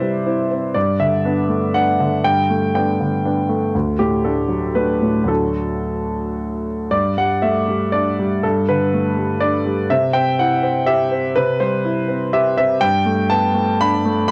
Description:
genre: neoclassical minimalist piano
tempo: 121 BPM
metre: 3/4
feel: rubato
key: G major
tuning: A4 = 439 Hz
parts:
  - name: clear grand piano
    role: solo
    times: 0.0-14.3 s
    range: D2 to B5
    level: -18 LUFS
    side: equal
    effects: cassette tape
room: moderate small room reverb, RT60 0.6 s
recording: home recording on cassette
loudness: -18 LUFS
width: mono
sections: 0.0-6.9 A section; 6.9-14.3 B section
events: none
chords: 0.0 C; 0.8 Gadd9; 3.7 D; 6.9 Gadd9; 9.9 C; 12.8 Gadd9

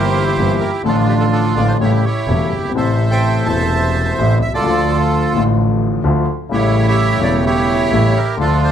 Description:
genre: tango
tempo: 128 BPM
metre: 4/4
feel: rubato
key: unclear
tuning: A4 = 440 Hz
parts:
  - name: bandoneon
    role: melody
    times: 0.0-8.7 s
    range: D4 to A5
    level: -18 LUFS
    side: right 3 dB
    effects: none
  - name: warm concert grand piano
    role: accompaniment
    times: 0.0-8.7 s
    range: E1 to G4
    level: -17 LUFS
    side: left 4 dB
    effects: none
  - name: clear double bass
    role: bass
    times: 0.0-8.7 s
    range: E1 to D2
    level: -18 LUFS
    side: right 2 dB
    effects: none
room: moderate large studio reverb, RT60 0.9 s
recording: none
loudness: -13 LUFS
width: side -9 dB against mid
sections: 0.0-8.7 A section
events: none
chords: 0.0 Edim/G; 0.9 Dm/A; 1.8 A7; 2.8 Am; 4.6 Dm; 6.5 A7

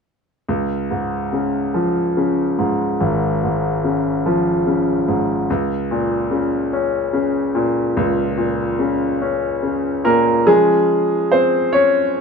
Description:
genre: pop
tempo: 48 BPM (dotted quarters)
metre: 6/8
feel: straight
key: Db major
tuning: A4 = 440 Hz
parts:
  - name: bright concert grand piano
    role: solo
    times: 0.5-12.2 s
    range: Ab1 to Db5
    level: -16 LUFS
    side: equal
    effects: none
room: moderate studio reverb, RT60 0.7 s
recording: band playing live in one room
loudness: -16 LUFS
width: side -5 dB against mid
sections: 0.5-10.5 A section; 10.5-12.2 B section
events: grand piano solo 10.5-12.2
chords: 0.5 Db; 5.5 Bbm/Db; 10.5 Db

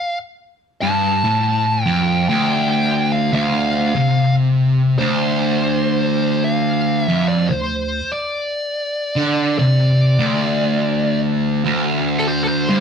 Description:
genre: metal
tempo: 58 BPM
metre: 4/4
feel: swing 59% on 8ths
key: D minor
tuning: A4 = 440 Hz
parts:
  - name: fuzz lead guitar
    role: melody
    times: 0.0-12.8 s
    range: A4 to A5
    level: -21 LUFS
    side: equal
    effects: wah, distortion
  - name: fuzz guitar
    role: riff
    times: 0.8-12.8 s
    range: D2 to D3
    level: -16 LUFS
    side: equal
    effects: distortion
room: wet large studio reverb, RT60 1.0 s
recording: band playing live in one room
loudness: -15 LUFS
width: side -7 dB against mid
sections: 0.0-11.7 A section; 11.7-12.8 B section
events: none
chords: none

